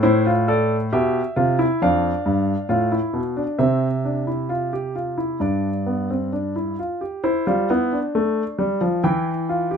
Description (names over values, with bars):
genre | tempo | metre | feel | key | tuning
classical, baroque-style 3-part fugue for grand piano | 67 BPM | 4/4 | straight | C major | A4 = 440 Hz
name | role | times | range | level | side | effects
warm grand piano | solo | 0.0-9.8 s | F2 to G5 | -19 LUFS | equal | none
room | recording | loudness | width
light reverb | minimal, uncompressed stereo recording | -19 LUFS | side -7 dB against mid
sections
0.0-7.2 A section; 7.2-9.8 B section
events
none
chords
0.0 Am; 1.8 Dm/F; 3.6 N.C.; 5.4 G5; 7.2 C; 9.0 Em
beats
| 0.03 0.91 1.79 2.69 | 3.59 4.49 5.40 6.31 | 7.22 8.13 9.02